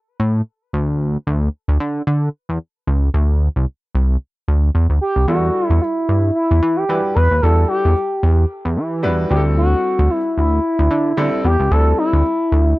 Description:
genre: early-eighties boogie funk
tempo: 112 BPM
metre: 4/4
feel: swing 56% on 16ths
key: E minor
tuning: A4 = 440 Hz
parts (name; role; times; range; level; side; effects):
- chorused synth bass; bass; 0.2-12.7 s; C2 to E3; -15 LUFS; equal; none
- expressive portamento lead; melody; 5.0-12.8 s; E4 to B4; -18 LUFS; equal; chorus
- warm concert grand piano; accompaniment; 5.3-12.2 s; G3 to B4; -22 LUFS; equal; none
room: little or no reverb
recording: dry, close 1970s-style studio recording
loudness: -15 LUFS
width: side -19 dB against mid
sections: 0.0-5.3 A section; 5.3-12.8 B section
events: none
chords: 0.0 N.C.; 5.3 Em11; 9.3 D9sus4

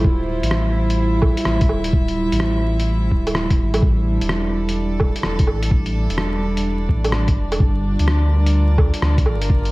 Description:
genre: future garage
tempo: 127 BPM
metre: 4/4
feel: swing 66% on 16ths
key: D minor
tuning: A4 = 440 Hz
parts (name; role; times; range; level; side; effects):
- warm chamber string section; sustained chords; 0.0-9.7 s; G3 to E5; -23 LUFS; right 1 dB; sidechain pumping
- warm sub bass; bass; 0.0-9.7 s; D1 to D2; -20 LUFS; equal; tube saturation, sidechain pumping
- electronic kick drum; drums; 0.0-9.6 s; none; -17 LUFS; equal; none
- lo-fi sampler-style drum kit; drums; 0.4-9.7 s; hi-hat, rim click, woodblock; -25 LUFS; right 1 dB; none
room: light reverb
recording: vinyl crackle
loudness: -16 LUFS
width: side -21 dB against mid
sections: 0.0-9.7 A section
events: none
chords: 0.0 Dm11; 3.8 A7sus4; 7.6 Gm7

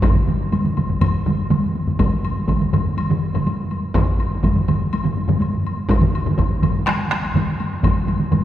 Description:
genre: japanese traditional, taiko drum ensemble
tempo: 123 BPM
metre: 4/4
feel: straight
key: none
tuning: none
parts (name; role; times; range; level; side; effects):
- taiko ensemble; percussion; 0.0-8.4 s; none; -24 LUFS; left 1 dB; none
- taiko ensemble; percussion; 0.0-8.4 s; none; -24 LUFS; left 2 dB; none
- taiko ensemble; percussion; 0.0-8.4 s; none; -22 LUFS; right 3 dB; none
- taiko ensemble; percussion; 0.0-7.9 s; none; -22 LUFS; equal; none
- woodblock; percussion; 0.0-8.4 s; none; -31 LUFS; left 4 dB; none
room: wet church reverb, RT60 3.6 s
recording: recorded in a church or concert hall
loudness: -17 LUFS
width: side -12 dB against mid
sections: 0.0-2.0 A section; 2.0-8.4 B section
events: none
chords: none

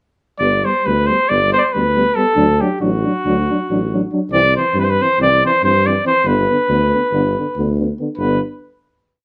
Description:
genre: balkan folk, Balkan brass band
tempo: 279 BPM (eighths)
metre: 9/8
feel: straight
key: G major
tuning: A4 = 440 Hz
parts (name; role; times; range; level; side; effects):
- clear flugelhorn; melody; 0.4-8.4 s; F#4 to D5; -18 LUFS; equal; plate reverb
- dark euphonium; accompaniment; 0.4-8.4 s; D3 to G3; -26 LUFS; equal; none
- mellow euphonium; accompaniment; 0.4-8.4 s; B3 to D4; -25 LUFS; equal; none
- mellow tuba; bass; 0.4-8.4 s; G1 to G2; -22 LUFS; equal; none
room: moderate studio reverb, RT60 0.6 s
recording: none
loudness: -16 LUFS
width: mono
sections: 0.4-8.2 A section; 8.2-9.2 final chord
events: none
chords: 0.4 G; 2.4 D; 4.3 C; 6.3 G

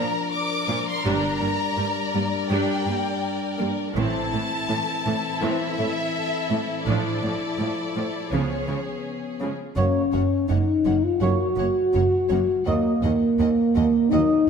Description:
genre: cinematic, epic orchestral film score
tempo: 82 BPM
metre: 4/4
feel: straight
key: unclear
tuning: A4 = 440 Hz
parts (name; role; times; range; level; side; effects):
- warm studio violin section; melody; 0.0-14.5 s; C#5 to D6; -30 LUFS; left 2 dB; none
- warm symphonic violin section; second line; 0.0-14.2 s; C#4 to Eb5; -32 LUFS; left 3 dB; none
- warm symphonic viola section; accompaniment; 0.0-14.2 s; E3 to D4; -31 LUFS; right 2 dB; none
- dark French horn section; sustained chords; 0.0-14.5 s; E3 to Gb4; -24 LUFS; left 1 dB; none
- rich symphonic cello section; bass; 0.0-14.2 s; Eb2 to C#3; -29 LUFS; right 3 dB; none
- rich chamber double bass section; bass; 1.1-14.2 s; Gb1 to Eb2; -28 LUFS; right 3 dB; none
- clear trombone section; sustained chords; 9.8-14.4 s; Gb3 to Bb3; -32 LUFS; right 4 dB; none
- dark trumpet; stabs; 9.8-14.4 s; Db5 to Eb5; -30 LUFS; right 1 dB; none
room: moderate scoring stage reverb, RT60 1.6 s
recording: none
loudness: -21 LUFS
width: side -6 dB against mid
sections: 0.0-9.8 A section; 9.8-14.5 B section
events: none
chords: 0.0 Bb; 1.1 Gm; 4.0 Am; 6.9 Dmadd9/A; 8.3 C#7; 9.8 Gb; 12.7 Ebm

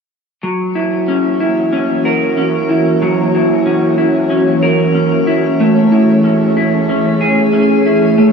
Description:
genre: dream pop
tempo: 93 BPM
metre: 4/4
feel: straight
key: F# mixolydian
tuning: A4 = 437 Hz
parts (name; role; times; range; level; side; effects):
- ethereal airy pad; sustained chords; 1.0-8.3 s; E3 to C#5; -15 LUFS; right 1 dB; ensemble chorus, built-in reverb
- electric guitar through a small old amp; arpeggios; 0.4-8.3 s; F#3 to A#4; -12 LUFS; equal; wide subtle chorus, ping-pong delay
room: wet shimmer reverb, RT60 4.6 s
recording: none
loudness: -11 LUFS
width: side -5 dB against mid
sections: 0.4-8.3 A section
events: none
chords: 0.4 F#7; 5.6 Amaj7

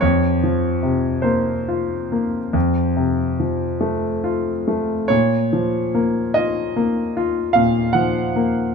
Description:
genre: classical, romantic nocturne for solo piano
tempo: 45-52 BPM (dotted quarters)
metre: 12/8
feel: rubato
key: Bb minor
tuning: A4 = 439 Hz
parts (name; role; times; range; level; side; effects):
- clear grand piano; solo; 0.0-8.7 s; F2 to Gb5; -17 LUFS; left 1 dB; none
room: light reverb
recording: close, detailed microphones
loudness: -17 LUFS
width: side -5 dB against mid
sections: 0.0-8.7 A section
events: none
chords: 0.0 Fsus4; 2.5 F; 5.1 Bbm

